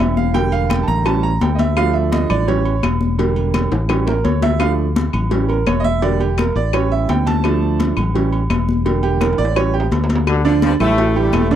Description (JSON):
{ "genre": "latin, salsa", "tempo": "169 BPM", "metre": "4/4", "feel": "straight", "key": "D harmonic minor", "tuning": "A4 = 440 Hz", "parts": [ { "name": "clear baby grand piano", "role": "accompaniment", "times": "0.0-11.6 s", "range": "D3 to Bb5", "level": "-19 LUFS", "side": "right 7 dB", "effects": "none" }, { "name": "fingered electric bass", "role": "bass", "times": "0.0-11.6 s", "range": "E1 to D2", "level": "-19 LUFS", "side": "left 1 dB", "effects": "none" }, { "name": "congas", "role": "percussion", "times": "0.2-11.6 s", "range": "none", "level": "-22 LUFS", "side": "left 5 dB", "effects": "none" }, { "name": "agogo bells and timbales", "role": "percussion", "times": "0.3-11.5 s", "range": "none", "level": "-28 LUFS", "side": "right 3 dB", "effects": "none" }, { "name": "cowbell and bongos", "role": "percussion", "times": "0.3-11.5 s", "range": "none", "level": "-26 LUFS", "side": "left 6 dB", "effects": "none" }, { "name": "claves", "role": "percussion", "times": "0.7-11.5 s", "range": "none", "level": "-27 LUFS", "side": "left 15 dB", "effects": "none" }, { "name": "bright trombone section", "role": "melody", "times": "10.3-11.6 s", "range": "G2 to F4", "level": "-20 LUFS", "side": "left 2 dB", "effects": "none" }, { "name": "bright saxophone section", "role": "second line", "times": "10.4-11.5 s", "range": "D3 to A3", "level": "-25 LUFS", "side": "left 6 dB", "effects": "none" } ], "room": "small room ambience", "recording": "dry, close 1970s-style studio recording", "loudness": "-14 LUFS", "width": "side -10 dB against mid", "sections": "0.0-10.3 A section; 10.3-11.6 B section", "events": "grand piano solo 0.0-10.3; drum fill 3.5-4.6, 9.2-10.3", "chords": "0.3 Em7b5; 1.1 A7; 1.8 Dm; 2.5 A7; 3.2 Em7b5; 3.9 A7; 4.6 Dm; 5.3 A7; 6.0 Em7b5; 6.7 A7; 7.4 Dm; 8.2 A7; 8.9 Em7b5; 9.6 A7; 10.3 Dm; 11.0 A5" }